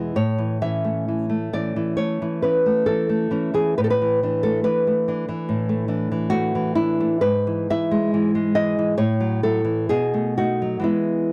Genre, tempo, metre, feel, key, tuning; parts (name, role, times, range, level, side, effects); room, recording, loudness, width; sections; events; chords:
romantic piece for solo classical guitar; 67 BPM; 4/4; uneven beats, rubato; E major from 7.2 s; A4 = 442 Hz
nylon-string guitar; solo; 0.0-11.3 s; E2 to E5; -22 LUFS; equal
light reverb; dry, close 1970s-style studio recording; -22 LUFS; mono
0.0-11.3 A section
0.1 A; 3.8 E5/A; 7.2 E/G#; 9.0 F#m7/A; 9.9 B7